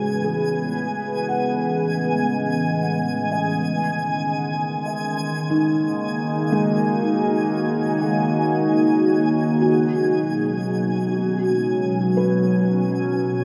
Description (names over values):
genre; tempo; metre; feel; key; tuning
ambient; free time; none; none; unclear; A4 = 440 Hz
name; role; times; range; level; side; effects
warbly tape-like pad; sustained chords; 0.0-13.4 s; A2 to B4; -24 LUFS; equal; chorus, built-in reverb, phaser, shimmer reverb
felt-muted upright piano; arpeggios; 0.0-13.4 s; D#3 to F#5; -28 LUFS; equal; analog chorus, tape echo, shimmer reverb
overtone-sweeping drone; drone; 0.0-13.4 s; C#3 to G#3; -30 LUFS; equal; chorus, built-in reverb
twinkling granular texture; texture; 0.0-13.4 s; G#5; -32 LUFS; equal; built-in reverb, subtle chorus, shimmer reverb
room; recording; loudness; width
wet huge ambient reverb, RT60 8.1 s; dreamy mix soaked in reverb; -21 LUFS; mono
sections
0.0-13.4 A section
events
fade-in on ambient pad 0.0-13.4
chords
0.0 Asus2; 3.6 D#m7; 9.7 Bmaj7